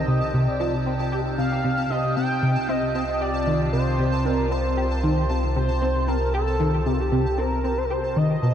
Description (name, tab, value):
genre	ambient, sequencer-driven space music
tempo	115 BPM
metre	4/4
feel	straight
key	C dorian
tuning	A4 = 440 Hz
part	expressive synth lead	melody	0.0-8.5 s	F4 to G5	-26 LUFS	equal	analog chorus, ping-pong delay
part	evolving wavetable pad	sustained chords	0.0-8.5 s	B2 to G5	-28 LUFS	equal	chorus, built-in reverb, phaser
part	plucky analog bass	riff	0.0-8.5 s	B2 to G4	-25 LUFS	equal	ensemble chorus, ping-pong delay
part	warm sub bass	bass	0.0-8.5 s	B1 to C2	-28 LUFS	equal	none
part	pulsing gated texture	texture	0.0-8.5 s	A5	-36 LUFS	equal	chorus, built-in reverb
room	moderate huge ambient reverb, RT60 8.2 s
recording	none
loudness	-20 LUFS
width	side -9 dB against mid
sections	0.0-8.5 A section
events	fade-in on sub bass 0.0-8.5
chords	0.0 Cm